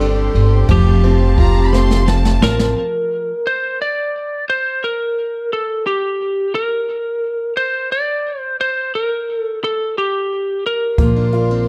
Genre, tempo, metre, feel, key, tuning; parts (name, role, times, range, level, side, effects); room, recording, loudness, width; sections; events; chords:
six-eight pop ballad; 58 BPM (dotted quarters); 6/8; straight; A4 = 440 Hz
lightly driven lead guitar; melody; 0.0-11.7 s; G4 to D5; -21 LUFS; equal; plate reverb
warm upright piano; accompaniment; 0.0-2.8, 11.0-11.7 s; F3 to G4; -24 LUFS; equal
warm studio string section; sustained chords; 0.0-2.7, 11.0-11.7 s; G4 to C6; -31 LUFS; equal; plate reverb
picked plugged-in steel-string acoustic guitar; arpeggios; 0.0-3.3, 11.0-11.7 s; F3 to Bb4; -27 LUFS; equal
upright bass; bass; 0.0-2.7, 11.0-11.7 s; F1 to Bb1; -17 LUFS; equal
jazz brush drum kit; drums; 0.0-2.7, 11.0-11.5 s; hi-hat, kick drum, ride cymbal, snare drum; -21 LUFS; equal
rich studio violin section; second line; 1.4-2.8 s; A5 to C6; -27 LUFS; equal; plate reverb
light reverb; dark, warm production; -17 LUFS; mono
0.0-2.7 A section; 2.7-11.7 B section
drum fill 1.7-2.7
0.0 Csus2/G; 0.7 Fadd9; 2.7 N.C.; 11.0 Bbadd9